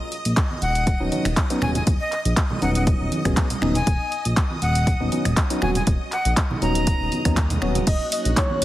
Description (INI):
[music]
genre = deep house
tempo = 120 BPM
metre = 4/4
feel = swing 54% on 16ths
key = unclear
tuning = A4 = 440 Hz
[part]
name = string machine, violins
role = texture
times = 0.0-8.6 s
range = Gb4 to Gb6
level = -34 LUFS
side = equal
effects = ensemble chorus
[part]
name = deep house drum kit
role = drums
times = 0.1-8.6 s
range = crash cymbal, finger snaps, handclaps, hi-hat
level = -28 LUFS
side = equal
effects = overdrive
[part]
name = smooth synth bass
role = bass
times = 0.3-8.6 s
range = D#1 to D#2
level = -24 LUFS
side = equal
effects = sidechain pumping
[part]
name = electronic kick drum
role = drums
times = 0.4-8.5 s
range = none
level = -21 LUFS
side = equal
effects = overdrive
[part]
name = congas and bongos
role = percussion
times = 0.5-8.6 s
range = none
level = -30 LUFS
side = right 2 dB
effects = none
[part]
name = breathy bright jazz flute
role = melody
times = 0.6-7.3 s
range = D#5 to Bb5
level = -28 LUFS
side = left 1 dB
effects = dub echo
[part]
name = percussive organ stab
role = stabs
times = 1.0-7.8 s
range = F#3 to Ab4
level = -26 LUFS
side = left 1 dB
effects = chorus, sidechain pumping, dub echo
[part]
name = warm velvety synth lead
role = melody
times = 7.9-8.6 s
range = Db5 to Eb5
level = -25 LUFS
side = equal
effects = chorus, vintage 12-bit sampler grit
[part]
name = airy breathy pad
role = sustained chords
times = 8.0-8.6 s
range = Gb3 to Db5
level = -30 LUFS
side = right 1 dB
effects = chorus, sidechain pumping
[sound]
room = light reverb, digital ambience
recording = heavily compressed radio sound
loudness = -19 LUFS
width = side -14 dB against mid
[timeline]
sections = 0.0-8.6 A section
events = none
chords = 0.0 Badd9/D#; 7.9 Ebm7